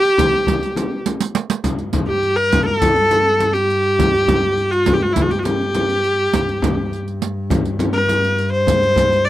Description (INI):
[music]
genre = Arabic maqam ensemble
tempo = 102 BPM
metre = 4/4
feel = straight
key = G maqam rast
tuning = A4 = 440 Hz
[part]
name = clear viola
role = melody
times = 0.0-9.3 s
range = E4 to D5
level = -16 LUFS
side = equal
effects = none
[part]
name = oud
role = second line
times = 0.0-1.0 s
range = none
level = barely audible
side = none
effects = none
[part]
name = riq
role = percussion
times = 0.0-9.3 s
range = none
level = -23 LUFS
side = right 9 dB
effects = none
[part]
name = frame drum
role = percussion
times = 0.2-9.1 s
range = none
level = -20 LUFS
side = left 2 dB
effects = none
[part]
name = rich double bass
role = drone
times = 1.6-9.3 s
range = G2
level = -24 LUFS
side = left 1 dB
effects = stereo widening
[sound]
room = light reverb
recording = dry, close 1970s-style studio recording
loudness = -15 LUFS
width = side -14 dB against mid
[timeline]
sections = 0.0-1.6 A section; 1.6-9.3 B section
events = drum fill 1.1-1.6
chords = none